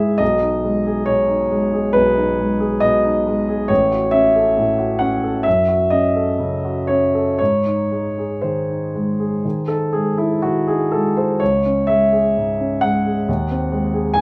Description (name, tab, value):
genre	classical, romantic character piece for solo piano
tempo	58-70 BPM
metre	4/4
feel	rubato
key	unclear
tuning	A4 = 439 Hz
part	warm concert grand piano	solo	0.0-14.2 s	A1 to G#5	-18 LUFS	equal	none
room	light reverb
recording	none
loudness	-18 LUFS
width	mono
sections	0.0-14.2 A section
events	none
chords	0.2 G#m/B; 3.7 F#m/A; 5.5 F#m; 7.4 G#; 11.4 C#m; 13.3 G#7/D#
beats	| 0.21 1.08 1.95 2.83 | 3.70 4.57 5.46 6.40 | 7.39 8.43 9.44 10.43 | 11.40 12.36 13.28 14.16